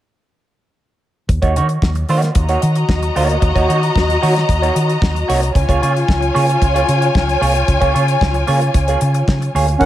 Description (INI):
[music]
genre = disco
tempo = 113 BPM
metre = 4/4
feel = straight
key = Eb minor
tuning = A4 = 439 Hz
[part]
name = clean electric guitar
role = accompaniment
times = 1.3-9.9 s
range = Bb3 to Db5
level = -20 LUFS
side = right 4 dB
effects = wah, spring reverb
[part]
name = hollow-body short-scale fingered electric bass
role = bass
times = 1.3-9.9 s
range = C2 to Eb3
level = -17 LUFS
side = equal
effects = none
[part]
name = damped 70s drum kit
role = drums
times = 1.3-9.9 s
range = hi-hat, kick drum, snare drum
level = -19 LUFS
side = equal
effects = none
[part]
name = dark studio string section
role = second line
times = 2.4-9.8 s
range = F4 to Bb5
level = -18 LUFS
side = left 2 dB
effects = none
[part]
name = accordion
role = sustained chords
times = 9.8-9.9 s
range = Eb3 to Gb5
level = -10 LUFS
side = right 2 dB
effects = light tremolo tuning
[sound]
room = light reverb, small room ambience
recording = none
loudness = -13 LUFS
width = side -13 dB against mid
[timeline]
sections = 1.3-9.9 A section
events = none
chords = 1.3 Ebm7; 5.6 Db6